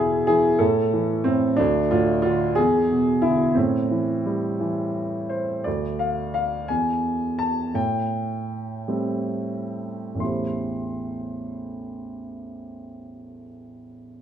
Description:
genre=classical, lyrical solo piano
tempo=41-62 BPM (dotted quarters)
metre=6/8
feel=rubato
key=A minor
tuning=A4 = 443 Hz
part: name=warm baby grand piano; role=solo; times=0.0-14.2 s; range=A1 to C6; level=-22 LUFS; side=equal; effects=none
room=moderate recital hall reverb, RT60 1.5 s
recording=minimal, uncompressed stereo recording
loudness=-21 LUFS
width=side -9 dB against mid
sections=0.0-5.7 A section; 5.7-10.2 B section; 10.2-14.2 C section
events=slowing down 5.7-10.2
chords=0.0 E5; 0.6 A5; 1.6 D5; 2.6 E7; 3.6 Am7; 5.7 N.C.; 7.8 Am7

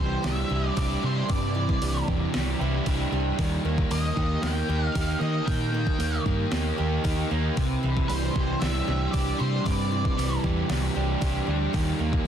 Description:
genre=rock, shoegaze and dream pop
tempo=115 BPM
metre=4/4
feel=straight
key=C major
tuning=A4 = 440 Hz
part: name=octave-fuzz lead guitar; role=melody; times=0.0-10.4 s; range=C5 to G5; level=-34 LUFS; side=equal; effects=distortion, tape echo
part: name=picked twelve-string acoustic guitar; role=arpeggios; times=0.0-12.3 s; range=E3 to G4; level=-37 LUFS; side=right 1 dB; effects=wide subtle chorus, tape echo
part: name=overdriven semi-hollow guitar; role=riff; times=0.0-12.3 s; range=C3 to G4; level=-30 LUFS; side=right 10 dB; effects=reverse reverb
part: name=thick fuzz guitar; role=riff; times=0.0-12.3 s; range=C3 to G4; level=-32 LUFS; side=left 10 dB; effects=distortion, ensemble chorus
part: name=hollow-body short-scale fingered electric bass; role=bass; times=0.0-12.3 s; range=C2 to Eb3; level=-28 LUFS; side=equal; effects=none
part: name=detuned 8-bit digital drum machine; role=drums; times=0.2-12.2 s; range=hi-hat, kick drum, snare drum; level=-29 LUFS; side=equal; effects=overdrive
room=light reverb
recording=dense, heavily limited modern master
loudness=-23 LUFS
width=side -9 dB against mid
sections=0.0-12.3 A section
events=none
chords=0.0 Cadd9; 3.4 Eb; 7.6 Cadd9; 11.7 Eb

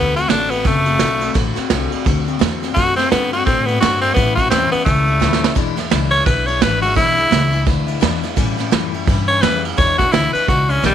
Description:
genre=rockabilly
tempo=171 BPM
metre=4/4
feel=swing 60% on 8ths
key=unclear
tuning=A4 = 440 Hz
part: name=raspy tenor saxophone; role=melody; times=0.0-10.9 s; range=G3 to C#5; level=-16 LUFS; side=left 1 dB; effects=none
part: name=picked steel-string acoustic guitar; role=accompaniment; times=0.0-10.9 s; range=E2 to F#4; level=-23 LUFS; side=left 14 dB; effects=none
part: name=upright bass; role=bass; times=0.0-10.9 s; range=F#1 to A2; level=-21 LUFS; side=left 1 dB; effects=none
part: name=vintage brush drum kit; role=drums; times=0.2-10.9 s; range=kick drum, ride cymbal, snare drum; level=-19 LUFS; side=right 4 dB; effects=none
room=small room ambience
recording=1960s-style stereo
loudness=-14 LUFS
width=side -9 dB against mid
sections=0.0-10.9 A section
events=tenor saxophone solo 0.0-10.9; drum fill 5.2-5.6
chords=0.0 D7; 4.2 A7; 5.6 E7; 8.4 A7; 9.8 E7

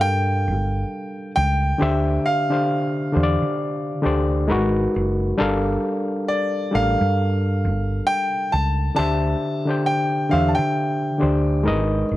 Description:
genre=R&B, neo-soul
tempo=67 BPM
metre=4/4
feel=swing 57% on 16ths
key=G dorian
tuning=A4 = 441 Hz
part: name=clear concert grand piano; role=melody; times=0.0-12.0 s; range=D5 to A5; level=-24 LUFS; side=equal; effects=slapback echo
part: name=overdriven reed electric piano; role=accompaniment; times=0.0-12.2 s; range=D3 to G5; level=-22 LUFS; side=left 1 dB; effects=none
part: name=hollow-body short-scale fingered electric bass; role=bass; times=0.0-12.2 s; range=Gb1 to D3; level=-22 LUFS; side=right 1 dB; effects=none
room=light reverb, studio reverb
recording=none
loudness=-19 LUFS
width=side -15 dB against mid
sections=0.0-12.2 A section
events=none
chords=0.0 Gm9; 1.8 D7sus4; 4.5 Abm9; 5.4 Gm9; 9.0 D7sus4; 11.6 Abmadd9

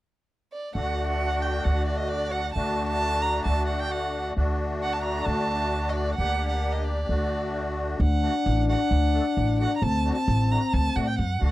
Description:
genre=klezmer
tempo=132 BPM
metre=2/4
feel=straight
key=D major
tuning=A4 = 441 Hz
part: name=dark violin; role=melody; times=0.5-11.5 s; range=D5 to Bb5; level=-29 LUFS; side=right 3 dB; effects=slapback echo
part: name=musette accordion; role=accompaniment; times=0.7-11.5 s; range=A3 to A4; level=-30 LUFS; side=left 2 dB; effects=none
part: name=upright bass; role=bass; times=0.8-11.5 s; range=A1 to A2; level=-26 LUFS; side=equal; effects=none
part: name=mellow trombone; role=second line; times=8.0-11.4 s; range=C4 to D4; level=-27 LUFS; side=left 5 dB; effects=none
room=little or no reverb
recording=dry, close 1970s-style studio recording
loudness=-23 LUFS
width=side -16 dB against mid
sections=0.7-8.0 A section; 8.0-11.5 A section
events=none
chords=0.0 N.C.; 0.7 D; 6.2 Gm/D; 7.1 D

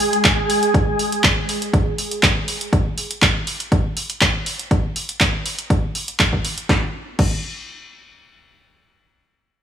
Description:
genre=filtered disco house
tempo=121 BPM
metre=4/4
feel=straight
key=unclear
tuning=A4 = 439 Hz
part: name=string machine, full ensemble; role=sustained chords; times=0.0-2.7 s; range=G#4 to G#5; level=-22 LUFS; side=right 1 dB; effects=ensemble chorus, sidechain pumping, low-pass filter
part: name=punchy analog drum machine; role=drums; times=0.0-7.3 s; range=crash cymbal, handclaps, hi-hat, snare drum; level=-20 LUFS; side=equal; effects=sidechain pumping on hats, sidechain pumping on cymbals
part: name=electronic kick drum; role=drums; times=0.2-7.3 s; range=none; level=-18 LUFS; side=equal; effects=none
room=light reverb, digital ambience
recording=studio reverb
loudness=-17 LUFS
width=side -9 dB against mid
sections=0.0-6.7 A section; 6.7-9.6 B section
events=none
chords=none

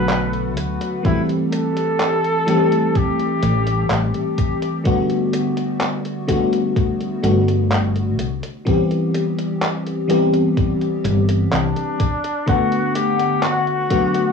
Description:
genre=vaporwave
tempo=63 BPM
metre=4/4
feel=straight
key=A dorian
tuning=A4 = 442 Hz
part: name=clear flugelhorn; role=melody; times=0.0-4.4, 11.5-14.3 s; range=D4 to B4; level=-23 LUFS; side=left 1 dB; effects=cassette tape, tape echo
part: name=FM electric piano with soft pad layer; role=accompaniment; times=0.0-14.3 s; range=D3 to F#5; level=-19 LUFS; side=left 2 dB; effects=wide subtle chorus, cassette tape, tape echo
part: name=woody fretless electric bass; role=bass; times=0.0-11.7 s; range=G1 to D2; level=-20 LUFS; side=equal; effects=none
part: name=detuned 8-bit digital drum machine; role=drums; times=0.1-14.3 s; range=handclaps, hi-hat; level=-25 LUFS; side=equal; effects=small room ambience
part: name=electronic kick drum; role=drums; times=1.0-14.1 s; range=none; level=-20 LUFS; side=equal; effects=small room ambience
room=moderate small room reverb, RT60 0.5 s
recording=home recording on cassette, small room ambience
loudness=-17 LUFS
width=side -5 dB against mid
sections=0.0-14.3 A section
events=none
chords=0.0 Bm7; 1.1 Am7; 4.9 Gmaj9; 8.2 Cmaj7; 12.0 Bm7

